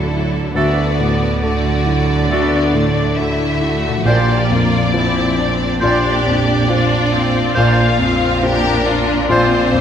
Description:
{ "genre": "cinematic, emotional film score for orchestra", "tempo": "69 BPM", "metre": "4/4", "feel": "rubato", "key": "unclear", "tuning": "A4 = 440 Hz", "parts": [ { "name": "rich symphonic violin section", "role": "melody", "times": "0.0-9.8 s", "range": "A4 to F5", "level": "-22 LUFS", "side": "left 2 dB", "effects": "none" }, { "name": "warm studio violin section", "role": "second line", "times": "0.0-9.8 s", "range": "D4 to G4", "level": "-23 LUFS", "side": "left 3 dB", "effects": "none" }, { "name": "rich symphonic viola section", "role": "accompaniment", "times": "0.0-9.8 s", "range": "F#3 to D4", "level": "-22 LUFS", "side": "equal", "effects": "none" }, { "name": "warm grand piano", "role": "accompaniment", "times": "0.0-9.8 s", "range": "Bb1 to C5", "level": "-20 LUFS", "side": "left 2 dB", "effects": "none" }, { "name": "concert harp", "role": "arpeggios", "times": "0.0-7.9 s", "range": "Bb2 to C5", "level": "-26 LUFS", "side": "left 9 dB", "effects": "none" }, { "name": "dark studio double bass section", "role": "bass", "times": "0.0-9.8 s", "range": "Bb1 to D2", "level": "-22 LUFS", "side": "right 4 dB", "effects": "none" }, { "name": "rich studio cello section", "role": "bass", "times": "0.0-9.8 s", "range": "Bb2 to D3", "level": "-22 LUFS", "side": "right 3 dB", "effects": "none" }, { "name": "mellow flute section", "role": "second line", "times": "0.5-9.7 s", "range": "D5 to E5", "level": "-24 LUFS", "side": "equal", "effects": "none" }, { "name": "clear oboe", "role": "second line", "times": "0.6-9.6 s", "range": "A4 to C5", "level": "-23 LUFS", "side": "right 1 dB", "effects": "none" }, { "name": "warm clarinet", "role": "second line", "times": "0.6-9.6 s", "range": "F4 to F#4", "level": "-23 LUFS", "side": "left 2 dB", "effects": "none" } ], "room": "moderate concert hall reverb, RT60 2.1 s", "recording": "none", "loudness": "-13 LUFS", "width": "side -8 dB against mid", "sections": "0.0-9.8 A section", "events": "none", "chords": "0.0 Dadd9; 4.1 Bbadd9", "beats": "| 0.56 1.44 2.31 3.18 | 4.06 4.94 5.82 6.70 | 7.57 8.44 9.30" }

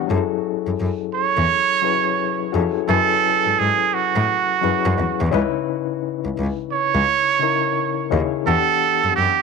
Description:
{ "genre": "R&B, neo-soul", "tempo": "86 BPM", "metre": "4/4", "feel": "swing 63% on 16ths", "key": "F# dorian", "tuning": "A4 = 438 Hz", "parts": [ { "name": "overdriven reed electric piano", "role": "accompaniment", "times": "0.0-9.4 s", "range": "C#3 to G#5", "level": "-23 LUFS", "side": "left 16 dB", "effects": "fast tremolo" }, { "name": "rich cello", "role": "bass", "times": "0.1-9.3 s", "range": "C#2 to A2", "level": "-22 LUFS", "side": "left 1 dB", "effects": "transformer saturation" }, { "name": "trumpet with straight mute", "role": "melody", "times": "1.1-9.4 s", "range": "F#4 to C#5", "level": "-18 LUFS", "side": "right 10 dB", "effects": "none" } ], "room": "light reverb, small room ambience", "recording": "1960s-style stereo with parts hard left and right", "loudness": "-17 LUFS", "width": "side -4 dB against mid", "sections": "0.1-9.4 A section", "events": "none", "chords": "0.1 F#m9; 5.3 C#m9; 8.5 Em9", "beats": "| 0.08 0.78 1.48 2.18 | 2.88 3.57 4.27 4.97 | 5.67 6.36 7.06 7.76 | 8.46 9.15" }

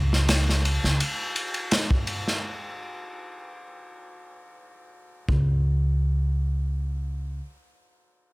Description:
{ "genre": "trip hop", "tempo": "84 BPM", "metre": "4/4", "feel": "swing 53% on 16ths", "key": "unclear", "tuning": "A4 = 440 Hz", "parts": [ { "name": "upright bass", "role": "bass", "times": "0.0-1.0, 5.3-7.4 s", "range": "C#2", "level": "-23 LUFS", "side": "equal", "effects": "tube saturation" }, { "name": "crunchy breakbeat drum kit", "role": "drums", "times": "0.1-5.4 s", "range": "kick drum, ride cymbal, snare drum", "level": "-26 LUFS", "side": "equal", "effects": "none" } ], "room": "little or no reverb", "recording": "none", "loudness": "-23 LUFS", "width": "side -27 dB against mid", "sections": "0.0-5.3 A section; 5.3-8.1 B section", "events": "none", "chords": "none", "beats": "0.29 1.00 1.72 | 2.43 3.15 3.86 4.57 | 5.29 6.00 6.72" }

